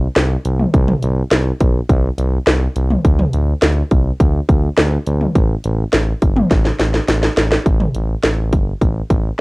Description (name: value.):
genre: synth-pop.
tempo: 104 BPM.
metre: 4/4.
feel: straight.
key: unclear.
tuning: A4 = 437 Hz.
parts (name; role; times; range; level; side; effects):
smooth synth bass; bass; 0.0-9.3 s; G1 to D2; -17 LUFS; equal; tube saturation.
house drum kit; drums; 0.2-9.2 s; hi-hat, kick drum, snare drum, toms; -15 LUFS; equal; cassette tape.
room: light reverb.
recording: home recording on cassette.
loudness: -13 LUFS.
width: side -26 dB against mid.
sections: 0.0-7.7 A section; 7.7-9.4 B section.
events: drum fill 6.5-7.7.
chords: none.